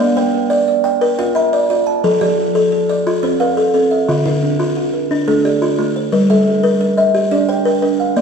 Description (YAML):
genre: southern african traditional, mbira-style interlocking cycle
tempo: 118 BPM (dotted quarters)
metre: 12/8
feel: straight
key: G equiheptatonic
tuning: A4 = 442 Hz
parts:
  - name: buzzing kalimba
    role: arpeggios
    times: 0.0-8.2 s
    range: D3 to G5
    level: -14 LUFS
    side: left 1 dB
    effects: none
  - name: kalimba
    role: arpeggios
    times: 0.0-8.2 s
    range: D3 to Bb5+43c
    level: -18 LUFS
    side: right 3 dB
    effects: none
room: wet recital hall reverb, RT60 1.6 s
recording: recorded in a church or concert hall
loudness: -13 LUFS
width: side -6 dB against mid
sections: 0.0-8.2 A section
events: none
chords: 0.0 Bb; 2.0 F; 4.1 Dm; 6.1 Gm